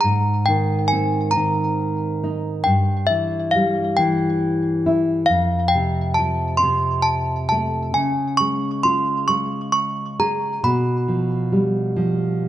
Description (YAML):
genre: children's music, lullaby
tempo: 46 BPM (dotted quarters)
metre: 6/8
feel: straight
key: unclear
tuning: A4 = 440 Hz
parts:
  - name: desk bells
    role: melody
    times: 0.0-12.3 s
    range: E5 to Db6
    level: -20 LUFS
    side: equal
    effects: tape echo
  - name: nylon-string guitar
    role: accompaniment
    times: 0.0-12.5 s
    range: F2 to Ab4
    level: -20 LUFS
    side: equal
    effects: none
room: moderate recital hall reverb, RT60 1.5 s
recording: dark, warm production, nothing above 10.3 kHz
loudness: -18 LUFS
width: side -12 dB against mid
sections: 0.0-12.5 A section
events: none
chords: 0.0 Abadd9; 2.7 Em/G; 5.3 F; 8.0 Db; 10.6 G7/B